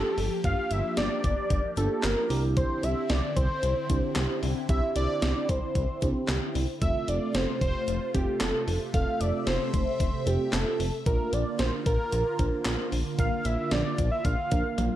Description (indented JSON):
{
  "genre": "synth-pop",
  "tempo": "113 BPM",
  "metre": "4/4",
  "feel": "straight",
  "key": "F major",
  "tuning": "A4 = 441 Hz",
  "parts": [
    { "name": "fat analog lead", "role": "melody", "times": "0.0-15.0 s", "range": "G4 to F5", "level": "-30 LUFS", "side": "equal", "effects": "tape echo" },
    { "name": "mellow tine electric piano", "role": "accompaniment", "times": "0.0-15.0 s", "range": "A3 to C5", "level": "-33 LUFS", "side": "right 5 dB", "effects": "phaser" },
    { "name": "phased analog pad", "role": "sustained chords", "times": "0.0-15.0 s", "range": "C3 to E5", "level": "-35 LUFS", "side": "left 1 dB", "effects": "phaser, chorus" },
    { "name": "chorused synth bass", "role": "bass", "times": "0.0-14.9 s", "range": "F1 to C2", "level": "-29 LUFS", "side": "equal", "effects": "none" },
    { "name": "clean 12-bit digital drum machine", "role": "drums", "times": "0.2-14.9 s", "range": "handclaps, hi-hat, kick drum, snare drum, toms", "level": "-30 LUFS", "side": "equal", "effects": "gated reverb" }
  ],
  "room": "digital ambience",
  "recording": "lossy compression artefacts",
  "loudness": "-25 LUFS",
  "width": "side -12 dB against mid",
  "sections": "0.0-15.0 A section",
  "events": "drum fill 14.8",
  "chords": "0.0 Gm7; 2.3 Cadd9; 6.8 F; 11.1 Bb",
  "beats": "| 0.44 0.97 1.51 2.04 | 2.57 3.10 3.63 4.16 | 4.69 5.22 5.75 6.28 | 6.82 7.35 7.88 8.41 | 8.94 9.47 10.00 10.53 | 11.06 11.59 12.12 12.66 | 13.19 13.72 14.25 14.78"
}